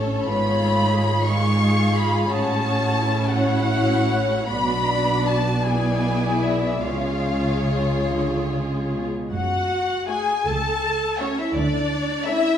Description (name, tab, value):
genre	classical, slow romantic movement for string orchestra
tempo	47-59 BPM (dotted quarters)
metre	6/8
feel	rubato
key	F# minor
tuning	A4 = 438 Hz
part	rich studio violin section	second line	0.0-12.5 s	A3 to E#5	-26 LUFS	left 3 dB	none
part	warm studio viola section	accompaniment	0.0-12.6 s	G#3 to A4	-26 LUFS	right 1 dB	none
part	rich studio double bass section	bass	0.0-12.4 s	F#1 to D2	-26 LUFS	right 2 dB	none
part	warm studio cello section	bass	0.0-12.4 s	C#2 to D3	-27 LUFS	right 1 dB	none
part	rich studio violin section	melody	0.2-12.6 s	C#5 to C#6	-24 LUFS	left 2 dB	none
room	wet recital hall reverb, RT60 1.6 s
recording	heard from further back in the room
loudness	-19 LUFS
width	side -9 dB against mid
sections	0.0-9.3 A section; 9.3-12.6 B section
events	none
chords	0.3 C#7/G#; 2.3 F#m/A; 4.5 Bm; 5.6 G#dim/B; 6.8 C#; 9.3 F#m; 11.6 Dmaj7(no3)